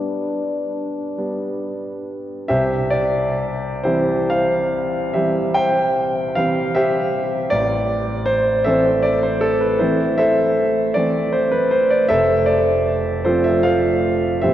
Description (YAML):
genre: classical, romantic duo for French horn and grand piano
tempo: 42-54 BPM (dotted quarters)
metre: 12/8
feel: rubato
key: C major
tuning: A4 = 439 Hz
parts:
  - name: warm French horn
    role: melody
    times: 0.0-2.0 s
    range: D4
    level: -28 LUFS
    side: left 3 dB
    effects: none
  - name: clear concert grand piano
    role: accompaniment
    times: 0.0-14.5 s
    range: F1 to G5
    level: -16 LUFS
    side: equal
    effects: none
room: wet cathedral reverb, RT60 4.5 s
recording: worn, warbling old tape, cassette tape, warbly pitch drift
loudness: -16 LUFS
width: side -12 dB against mid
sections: 0.0-2.5 A section; 2.5-14.5 A section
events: none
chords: 0.0 G; 2.5 C; 7.5 Am; 12.1 F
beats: 1.18 | 2.51 3.85 5.16 6.38 | 7.52 8.66 9.81 10.96 | 12.10 13.26 14.43